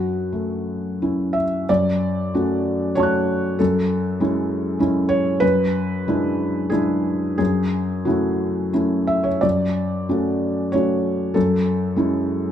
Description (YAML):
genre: neoclassical minimalist piano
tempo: 85-100 BPM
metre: 3/4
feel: rubato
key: unclear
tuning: A4 = 441 Hz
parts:
  - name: felt-muted upright piano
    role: solo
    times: 0.0-12.5 s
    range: F#2 to F#6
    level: -18 LUFS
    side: equal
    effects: none
room: moderate large studio reverb, RT60 1.1 s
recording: band playing live in one room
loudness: -18 LUFS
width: side -9 dB against mid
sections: 0.0-1.7 A section; 1.7-12.5 A section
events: none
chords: 0.0 F#m7; 1.7 Dmaj7/F#; 3.6 Amaj7/F#; 5.4 E7/F#; 7.4 F#m7; 9.4 Dmaj7/F#; 11.4 Amaj7/F#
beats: 0.32 1.00 | 1.69 2.34 2.96 | 3.59 4.21 4.81 | 5.42 6.06 6.72 | 7.39 8.06 8.74 | 9.44 10.10 10.73 | 11.35 11.97